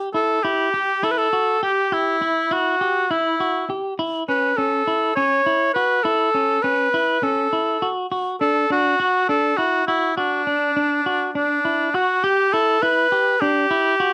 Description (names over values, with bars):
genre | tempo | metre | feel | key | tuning
progressive instrumental, progressive | 204 BPM (eighths) | 7/8 | straight | unclear | A4 = 438 Hz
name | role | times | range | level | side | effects
clean electric guitar | arpeggios | 0.0-14.1 s | C#4 to G4 | -26 LUFS | equal | vibrato effect
warm cor anglais | melody | 0.1-14.1 s | D4 to C#5 | -21 LUFS | equal | none
room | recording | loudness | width
moderate studio reverb, RT60 0.5 s | none | -20 LUFS | mono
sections
0.0-12.2 A section; 12.2-14.1 B section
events
none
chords
0.0 Emadd9; 4.0 A6; 8.1 Dadd9; 12.2 Dsus2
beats
0.15 0.44 0.74 1.04 1.33 1.63 | 1.92 2.22 2.52 2.81 3.10 3.40 3.70 | 3.99 4.29 4.58 4.88 5.17 5.47 5.76 | 6.06 6.35 6.65 6.94 7.24 7.53 7.83 | 8.12 8.41 8.71 9.00 9.30 9.59 9.89 | 10.18 10.47 10.77 11.06 11.36 11.65 11.95 | 12.24 12.53 12.83 13.12 13.41 13.71 14.00